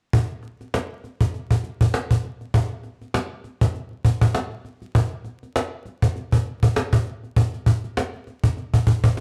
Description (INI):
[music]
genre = funk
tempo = 100 BPM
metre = 4/4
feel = swing 56% on 16ths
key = none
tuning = none
[part]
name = cajon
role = drums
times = 0.1-9.2 s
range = none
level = -22 LUFS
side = equal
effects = none
[sound]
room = light reverb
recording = dark, warm production, vinyl crackle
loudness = -23 LUFS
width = mono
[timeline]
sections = 0.1-9.2 A section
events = none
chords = none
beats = | 0.13 0.73 1.33 1.94 | 2.54 3.14 3.75 4.35 | 4.95 5.55 6.16 6.76 | 7.36 7.96 8.57 9.17